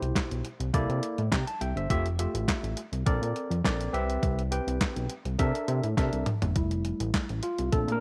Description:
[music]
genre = early-eighties boogie funk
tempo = 103 BPM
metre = 4/4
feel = straight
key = C major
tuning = A4 = 438 Hz
[part]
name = tine electric piano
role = accompaniment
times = 0.0-8.0 s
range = B2 to Bb5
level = -34 LUFS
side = equal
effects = none
[part]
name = fat analog bass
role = bass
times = 0.0-8.0 s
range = F1 to C3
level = -32 LUFS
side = equal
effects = none
[part]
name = crisp 8-bit digital drum machine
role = drums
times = 0.0-8.0 s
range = handclaps, hi-hat, kick drum, snare drum, toms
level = -32 LUFS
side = equal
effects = overdrive
[sound]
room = light reverb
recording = none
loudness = -29 LUFS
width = mono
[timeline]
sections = 0.0-6.6 A section; 6.6-8.0 B section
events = drum fill 6.0-6.6; tine electric piano solo 6.6-8.0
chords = 0.0 Cmaj7; 0.7 C13; 1.9 Fmaj9; 3.1 Bbmaj9; 3.9 Cmaj7; 5.4 C13; 6.6 Fmaj9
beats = 0.15 0.73 1.32 | 1.90 2.48 3.06 3.65 | 4.23 4.81 5.39 5.98 | 6.56 7.14 7.73

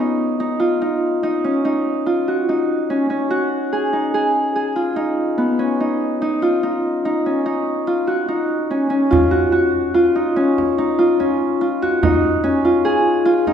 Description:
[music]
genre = contemporary instrumental, chamber music in an uneven meter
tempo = 144 BPM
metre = 7/4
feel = straight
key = unclear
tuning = A4 = 440 Hz
[part]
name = Celtic harp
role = arpeggios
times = 0.0-13.5 s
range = B3 to G#4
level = -16 LUFS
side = equal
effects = none
[part]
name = frame drum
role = percussion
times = 9.1-13.5 s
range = none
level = -23 LUFS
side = right 2 dB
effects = none
[sound]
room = wet scoring stage reverb, RT60 1.6 s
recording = heard from further back in the room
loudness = -16 LUFS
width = side -8 dB against mid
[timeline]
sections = 0.0-9.1 A section; 9.1-13.5 B section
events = none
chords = 0.4 D#m7; 12.0 C#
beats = | 0.40 0.82 1.23 1.65 2.06 2.48 2.89 | 3.31 3.73 4.14 4.56 4.97 5.39 5.80 | 6.22 6.63 7.05 7.46 7.88 8.29 8.71 | 9.12 9.54 9.95 10.37 10.78 11.20 11.61 | 12.03 12.44 12.86 13.28

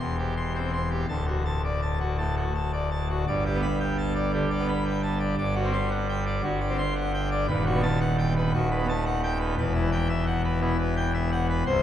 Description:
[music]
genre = classical, organ toccata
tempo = 114 BPM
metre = 4/4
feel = straight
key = G major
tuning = A4 = 441 Hz
[part]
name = pipe organ, full organ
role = solo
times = 0.0-11.8 s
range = C1 to C6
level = -24 LUFS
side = equal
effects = none
[sound]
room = wet cathedral reverb, RT60 4.7 s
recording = dark, warm production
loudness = -24 LUFS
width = side -10 dB against mid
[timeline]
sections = 0.0-3.3 A section; 3.3-11.8 B section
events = none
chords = 0.0 C/E; 1.1 D; 3.3 G; 5.4 D7/G; 7.5 B7/D#; 9.6 Em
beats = 0.00 0.54 | 1.08 1.64 2.18 2.73 | 3.28 3.81 4.34 4.86 | 5.38 5.91 6.44 6.97 | 7.49 8.01 8.53 9.05 | 9.57 10.09 10.62 11.14 | 11.66

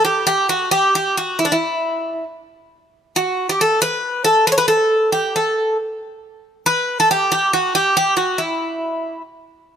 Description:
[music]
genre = greek folk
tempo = 137 BPM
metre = 4/4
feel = straight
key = unclear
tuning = A4 = 440 Hz
[part]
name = Greek bouzouki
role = solo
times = 0.0-9.2 s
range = D4 to C#5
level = -15 LUFS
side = equal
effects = none
[sound]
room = moderate plate reverb, RT60 2.3 s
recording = none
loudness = -15 LUFS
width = side -8 dB against mid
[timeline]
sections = 0.0-9.8 A section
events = speeding up 0.0-9.8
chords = none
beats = 0.06 0.50 0.95 | 1.39 1.83 2.28 2.72 | 3.16 3.60 4.04 4.48 | 4.92 5.36 5.79 6.23 | 6.67 7.10 7.53 7.97 | 8.40 8.83

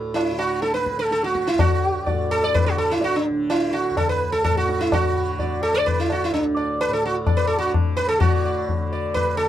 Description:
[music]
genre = indian classical, Hindustani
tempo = 127 BPM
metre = 7/4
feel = straight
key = D raga bhupali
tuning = A4 = 440 Hz
[part]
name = tanpura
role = drone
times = 0.0-9.5 s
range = D2 to D3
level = -31 LUFS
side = right 3 dB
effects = none
[part]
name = sitar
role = melody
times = 0.1-9.5 s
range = D4 to D5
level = -21 LUFS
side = right 1 dB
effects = none
[part]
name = tabla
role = percussion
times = 0.2-9.5 s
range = none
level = -24 LUFS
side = left 3 dB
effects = none
[sound]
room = light reverb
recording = dark, warm production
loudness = -19 LUFS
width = side -11 dB against mid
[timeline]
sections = 0.0-8.2 A section; 8.2-9.5 B section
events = none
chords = none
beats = 0.15 0.63 1.11 | 1.59 2.06 2.54 3.02 3.49 3.97 4.44 | 4.91 5.39 5.86 6.33 6.80 7.27 7.75 | 8.21 8.68 9.15

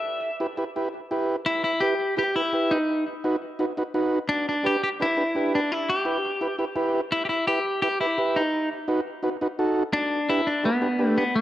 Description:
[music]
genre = latin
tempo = 170 BPM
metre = 4/4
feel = straight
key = E minor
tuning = A4 = 440 Hz
[part]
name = clean electric guitar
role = melody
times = 0.0-11.4 s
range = B3 to E5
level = -24 LUFS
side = left 1 dB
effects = analog delay
[part]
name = overdriven combo organ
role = accompaniment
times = 0.4-11.2 s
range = D4 to B4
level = -26 LUFS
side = right 1 dB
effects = analog delay
[sound]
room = moderate spring reverb, RT60 1.2 s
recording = echo-heavy mix, cassette tape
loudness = -22 LUFS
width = side -13 dB against mid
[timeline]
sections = 0.0-1.5 A section; 1.5-11.4 B section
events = none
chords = 0.0 Em; 2.9 B; 4.3 G; 5.7 Em; 8.5 B7; 9.9 G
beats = | 0.05 0.41 0.76 1.11 | 1.47 1.82 2.17 2.53 | 2.88 3.23 3.59 3.94 | 4.29 4.65 5.00 5.35 | 5.71 6.06 6.41 6.76 | 7.12 7.47 7.82 8.18 | 8.53 8.88 9.23 9.59 | 9.94 10.29 10.64 11.00 | 11.35

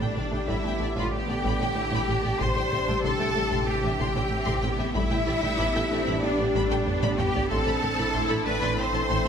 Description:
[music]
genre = cinematic, hybrid orchestral and electronic film score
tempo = 94 BPM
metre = 4/4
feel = straight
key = unclear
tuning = A4 = 439 Hz
[part]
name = warm symphonic violin section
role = melody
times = 0.0-9.3 s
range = D5 to C6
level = -36 LUFS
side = left 4 dB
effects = none
[part]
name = warm symphonic violin section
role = second line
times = 0.0-9.3 s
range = D5 to C6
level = -32 LUFS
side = left 2 dB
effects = none
[part]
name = rich studio viola section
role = accompaniment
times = 0.0-9.3 s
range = G3 to E4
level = -35 LUFS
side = equal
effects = none
[part]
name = dark French horn section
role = sustained chords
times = 0.0-9.3 s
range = C4 to A4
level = -34 LUFS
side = left 4 dB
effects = none
[part]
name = phased analog pad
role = sustained chords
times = 0.0-9.3 s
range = C3 to E5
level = -38 LUFS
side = equal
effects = none
[part]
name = warm trombone section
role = sustained chords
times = 0.0-9.3 s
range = C3 to D4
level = -37 LUFS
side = right 3 dB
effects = none
[part]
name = woody wave-folded pluck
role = arpeggios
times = 0.0-9.3 s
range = C3 to A4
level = -37 LUFS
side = left 5 dB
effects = none
[part]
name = plucky analog bass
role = riff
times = 0.0-9.3 s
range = A2 to A3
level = -33 LUFS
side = right 2 dB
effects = none
[part]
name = rich studio double bass section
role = bass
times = 0.0-9.2 s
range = A1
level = -34 LUFS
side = right 4 dB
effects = none
[part]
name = rich symphonic cello section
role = bass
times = 0.0-9.3 s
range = D4 to C5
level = -29 LUFS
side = right 1 dB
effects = none
[part]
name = warm sub bass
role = bass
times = 0.0-9.3 s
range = A1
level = -36 LUFS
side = equal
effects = none
[part]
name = solo taiko drums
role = drums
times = 0.0-9.3 s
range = none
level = -34 LUFS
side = equal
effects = none
[sound]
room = wet scoring stage reverb, RT60 1.6 s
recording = none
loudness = -23 LUFS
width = side -7 dB against mid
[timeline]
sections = 0.0-9.3 A section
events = drum fill 6.9-7.5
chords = 0.0 G/A; 2.4 Cadd9/A; 7.5 Amadd9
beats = 0.49 1.13 1.77 | 2.41 3.05 3.68 4.32 | 4.96 5.60 6.24 6.88 | 7.51 8.15 8.79

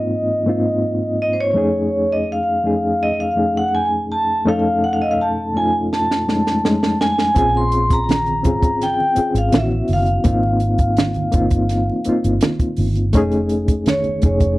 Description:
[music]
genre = lush 1970s-style soul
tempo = 83 BPM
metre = 4/4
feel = straight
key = unclear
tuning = A4 = 440 Hz
[part]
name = vibraphone with hard mallets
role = melody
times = 0.0-14.6 s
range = C5 to C6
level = -19 LUFS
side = equal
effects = slapback echo
[part]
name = reed electric piano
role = accompaniment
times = 0.0-14.6 s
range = F2 to A4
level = -20 LUFS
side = left 1 dB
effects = fast tremolo
[part]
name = compact cocktail drum kit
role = drums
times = 5.9-14.6 s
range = hi-hat, kick drum, snare drum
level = -18 LUFS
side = right 1 dB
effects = none
[part]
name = vintage muted fingered electric bass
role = bass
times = 7.4-14.6 s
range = F1 to Bb1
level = -20 LUFS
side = equal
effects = none
[part]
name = congas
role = percussion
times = 7.4-14.4 s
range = none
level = -28 LUFS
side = right 4 dB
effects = none
[sound]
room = light reverb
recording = dry, close 1970s-style studio recording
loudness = -15 LUFS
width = side -18 dB against mid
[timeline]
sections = 0.0-14.6 A section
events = drum fill 5.9-7.4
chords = 0.0 Ab6; 1.6 F7alt; 7.4 Bbm7; 9.5 A6; 10.3 Ab6; 13.2 F7alt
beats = 0.10 0.83 | 1.56 2.28 3.01 3.74 | 4.46 5.19 5.91 6.64 | 7.36 8.09 8.81 9.54 | 10.26 10.98 11.71 12.43 | 13.15 13.87

